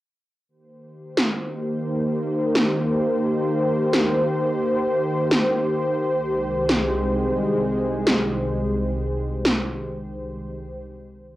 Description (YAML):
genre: synthwave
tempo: 87 BPM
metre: 4/4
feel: straight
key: C minor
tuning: A4 = 435 Hz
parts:
  - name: lush unison pad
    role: sustained chords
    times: 1.2-10.8 s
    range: C2 to C5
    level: -22 LUFS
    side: equal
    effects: chorus, cassette tape
  - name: electronic snare drum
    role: drums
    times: 1.2-9.6 s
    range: none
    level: -21 LUFS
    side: equal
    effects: overdrive, cassette tape
room: wet studio reverb, RT60 0.5 s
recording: home recording on cassette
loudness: -20 LUFS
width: side -16 dB against mid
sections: 0.5-11.4 A section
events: stop 10.8-11.4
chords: 0.5 Cm7; 6.0 Abmaj7/C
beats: | 0.48 1.17 1.86 2.55 | 3.24 3.93 4.62 5.31 | 6.00 6.69 7.38 8.07 | 8.76 9.45 10.14